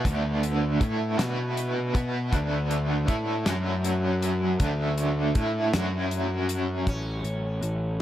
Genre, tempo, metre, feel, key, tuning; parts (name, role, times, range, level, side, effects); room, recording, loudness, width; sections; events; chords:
psychedelic rock; 53 BPM (dotted quarters); 6/8; straight; A4 = 439 Hz
cranked stack guitar; riff; 0.0-6.9 s; D3 to B4; -28 LUFS; right 1 dB; overdrive, tremolo, dub echo
fuzz picked electric bass; bass; 0.0-8.0 s; A1 to B2; -28 LUFS; left 1 dB; overdrive
damped 70s drum kit; drums; 0.1-7.8 s; hi-hat, kick drum, snare drum; -27 LUFS; equal
sitar; melody; 6.9-8.0 s; C#4; -35 LUFS; equal; dub echo
small room reverb; echo-heavy mix; -24 LUFS; side -12 dB against mid
0.0-6.9 A section; 6.9-8.0 B section
0.0 D5; 1.2 B5; 1.9 D5; 3.5 F#5; 4.6 D5; 5.7 F#5; 6.9 A